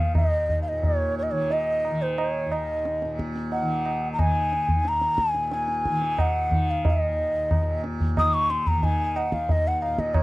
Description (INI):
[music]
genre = indian classical, Hindustani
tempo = 90 BPM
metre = 4/4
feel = straight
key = Eb raga bhimpalasi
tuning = A4 = 440 Hz
[part]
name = mellow bansuri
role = melody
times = 0.0-10.2 s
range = C5 to Eb6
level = -24 LUFS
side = equal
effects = none
[part]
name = tanpura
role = drone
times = 0.0-10.2 s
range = Eb2 to Eb3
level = -30 LUFS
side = equal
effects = none
[part]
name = tabla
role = percussion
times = 0.1-10.2 s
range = none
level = -25 LUFS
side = right 1 dB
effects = none
[sound]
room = little or no reverb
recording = dry, close 1970s-style studio recording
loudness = -22 LUFS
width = side -19 dB against mid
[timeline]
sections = 0.0-10.2 A section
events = speeding up 0.0-10.2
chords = none